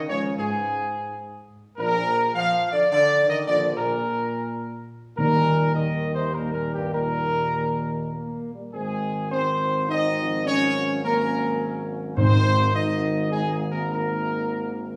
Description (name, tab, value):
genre	classical, ceremonial fanfare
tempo	105 BPM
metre	3/4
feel	straight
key	Ab mixolydian from 8.7 s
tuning	A4 = 441 Hz
part	clear trombone section	sustained chords	0.0-15.0 s	G2 to Eb4	-34 LUFS	equal	none
part	dark trumpet section	melody	0.1-15.0 s	G4 to F5	-26 LUFS	equal	none
part	mellow French horn section	sustained chords	0.1-15.0 s	Eb3 to Eb4	-33 LUFS	equal	none
part	clear tuba	bass	0.1-15.0 s	Ab1 to Eb2	-32 LUFS	equal	none
part	timpani	percussion	5.2-6.0, 12.2-13.0 s	Ab2 to Eb3	-25 LUFS	equal	none
room	wet recital hall reverb, RT60 1.3 s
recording	recorded in a church or concert hall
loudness	-24 LUFS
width	mono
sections	0.0-8.7 A section; 8.7-15.0 B section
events	none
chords	0.0 Db5; 1.8 Bb; 5.2 Eb; 8.7 Ab; 10.5 Gb/Ab; 12.2 Ab